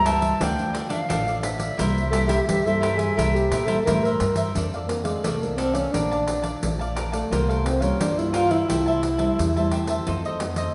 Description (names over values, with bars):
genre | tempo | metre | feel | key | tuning
samba and choro | 87 BPM | 4/4 | straight | F major | A4 = 441 Hz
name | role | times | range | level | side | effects
silver concert flute | melody | 0.0-4.2 s | E5 to A5 | -29 LUFS | equal | none
cavaquinho | accompaniment | 0.0-10.7 s | D4 to A5 | -32 LUFS | equal | none
nylon-string guitar | accompaniment | 0.0-10.7 s | F2 to A4 | -32 LUFS | equal | none
upright bass | bass | 0.0-10.7 s | A1 to Bb2 | -30 LUFS | equal | none
pandeiro | percussion | 0.1-10.7 s | none | -31 LUFS | equal | none
breathy tenor saxophone | second line | 2.1-10.2 s | Ab3 to Bb4 | -27 LUFS | equal | none
room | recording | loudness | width
wet recital hall reverb, RT60 1.6 s | recorded in a church or concert hall, nothing above 10.7 kHz | -23 LUFS | mono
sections
0.0-4.5 A section; 4.5-10.7 B section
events
tenor saxophone solo 4.5-10.7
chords
0.4 Dm; 1.8 C7; 4.5 F6; 5.9 Bbmaj7; 7.3 C7sus4; 8.7 Am7/C; 10.1 F7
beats
0.41 1.10 | 1.79 2.48 3.17 3.86 | 4.55 5.24 5.93 6.62 | 7.31 8.00 8.69 9.38 | 10.07